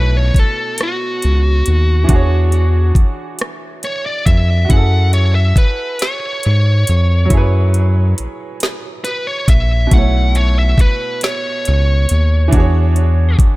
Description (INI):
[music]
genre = slow six-eight R&B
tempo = 46 BPM (dotted quarters)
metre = 6/8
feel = straight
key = F# minor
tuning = A4 = 440 Hz
[part]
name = smooth overdriven lead guitar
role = melody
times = 0.0-13.4 s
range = F#4 to F#5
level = -21 LUFS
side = equal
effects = tape echo
[part]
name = bright baby grand piano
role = accompaniment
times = 0.0-13.6 s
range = B2 to C#5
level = -24 LUFS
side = right 3 dB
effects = tape echo
[part]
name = round analog bass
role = bass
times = 0.0-13.5 s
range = A#1 to G#2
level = -12 LUFS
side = equal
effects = none
[part]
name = smooth R&B drum kit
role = drums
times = 0.3-13.6 s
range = hi-hat, kick drum, rim click, snare drum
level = -13 LUFS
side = equal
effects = none
[sound]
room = little or no reverb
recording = echo-heavy mix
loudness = -12 LUFS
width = side -20 dB against mid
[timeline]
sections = 0.0-13.6 A section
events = lead electric guitar solo 0.0-13.6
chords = 0.0 B9sus4; 2.1 E13; 4.7 F#m9; 9.9 B9sus4; 12.5 E13